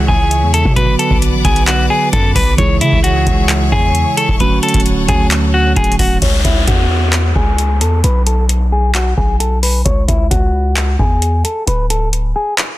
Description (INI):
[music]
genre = hip hop, trap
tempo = 132 BPM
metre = 4/4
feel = half-time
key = C# phrygian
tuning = A4 = 440 Hz
[part]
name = clean electric guitar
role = melody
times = 0.0-12.5 s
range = E4 to C#5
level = -17 LUFS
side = left 1 dB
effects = low-pass filter, tape echo
[part]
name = mellow tine electric piano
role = accompaniment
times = 0.0-6.2 s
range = C#3 to B4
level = -18 LUFS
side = right 5 dB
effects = none
[part]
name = clear symphonic string section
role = sustained chords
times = 0.0-6.2 s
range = G#4 to D6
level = -24 LUFS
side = left 4 dB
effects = none
[part]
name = long sustained 808-style bass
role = bass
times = 0.0-12.3 s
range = D1 to C#3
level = -15 LUFS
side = equal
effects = none
[part]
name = booming analog drum machine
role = drums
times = 0.1-12.7 s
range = crash cymbal, handclaps, hi-hat, kick drum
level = -15 LUFS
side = equal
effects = none
[part]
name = downlifter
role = sound effects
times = 6.2-9.9 s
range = none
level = -22 LUFS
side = equal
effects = none
[sound]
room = little or no reverb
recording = dense, heavily limited modern master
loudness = -11 LUFS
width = side -16 dB against mid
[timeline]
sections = 0.0-6.2 A section; 6.2-12.8 B section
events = filter sweep on clean electric guitar 6.2-12.8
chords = 0.0 C#m; 0.8 Bm; 2.6 C#m; 4.4 Dmaj7; 6.2 C#m; 8.0 N.C.; 9.9 C#m; 11.7 D5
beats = 0.31 | 0.77 1.22 1.68 2.13 | 2.58 3.04 3.49 3.95 | 4.40 4.86 5.31 5.76 | 6.22 6.67 7.13 7.58 | 8.04 8.49 8.95 9.40 | 9.86 10.31 10.77 11.22 | 11.68 12.13 12.58